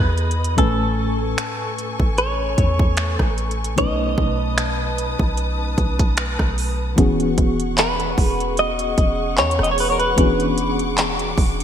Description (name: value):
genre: contemporary R&B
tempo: 75 BPM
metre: 4/4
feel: swing 54% on 16ths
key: E major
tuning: A4 = 440 Hz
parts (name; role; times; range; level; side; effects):
- direct-recorded clean electric guitar; melody; 0.0-10.8 s; A4 to D#5; -23 LUFS; equal; wide subtle chorus
- mellow FM electric piano; accompaniment; 0.0-11.6 s; A2 to G#5; -25 LUFS; left 2 dB; chorus, tremolo
- warm studio string section; sustained chords; 0.0-11.6 s; G#4 to D#6; -29 LUFS; left 1 dB; none
- clean 808-style bass; bass; 0.0-11.6 s; E1 to E2; -24 LUFS; equal; none
- trap drum kit; drums; 0.2-11.6 s; finger snaps, handclaps, hi-hat, kick drum, rim click; -20 LUFS; equal; gated reverb
room: moderate lush hall reverb, RT60 2.8 s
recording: bright 1980s-style digital production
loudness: -17 LUFS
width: side -9 dB against mid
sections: 0.0-7.0 A section; 7.0-11.6 B section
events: none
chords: 0.0 Emaj7; 0.6 Amaj7; 3.8 B7; 7.0 E69; 10.2 E13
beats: | 0.58 1.38 2.18 2.98 | 3.78 4.58 5.38 6.18 | 6.98 7.78 8.58 9.38 | 10.18 10.98